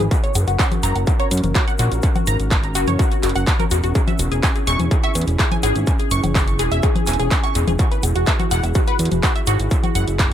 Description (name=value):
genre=melodic techno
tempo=125 BPM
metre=4/4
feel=straight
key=unclear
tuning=A4 = 440 Hz
part: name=dark analog pad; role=sustained chords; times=0.0-10.3 s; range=C#4 to A#4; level=-27 LUFS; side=right 2 dB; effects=chorus, sidechain pumping
part: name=tight sequenced synth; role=arpeggios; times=0.0-10.0 s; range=F#4 to C#6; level=-24 LUFS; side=left 2 dB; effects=chorus, phaser, sidechain pumping, analog delay
part: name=fat analog bass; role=bass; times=0.0-10.3 s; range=E1 to F#2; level=-20 LUFS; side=equal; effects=sidechain pumping
part: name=techno drum kit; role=drums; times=0.0-10.3 s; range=congas, handclaps, hi-hat, woodblock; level=-24 LUFS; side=left 1 dB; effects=overdrive, dub echo
part: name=tube shaker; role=percussion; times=0.0-10.3 s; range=none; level=-33 LUFS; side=left 5 dB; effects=none
part: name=electronic kick drum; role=drums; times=0.1-10.3 s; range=none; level=-19 LUFS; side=equal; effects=distortion, overdrive
room=light reverb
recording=echo-heavy mix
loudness=-16 LUFS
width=side -10 dB against mid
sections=0.0-10.3 A section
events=none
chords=0.1 F#; 4.0 C#m/E; 7.8 Eadd9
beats=| 0.11 0.59 1.07 1.55 | 2.03 2.51 2.99 3.47 | 3.95 4.43 4.91 5.39 | 5.87 6.35 6.83 7.31 | 7.79 8.27 8.75 9.23 | 9.71 10.19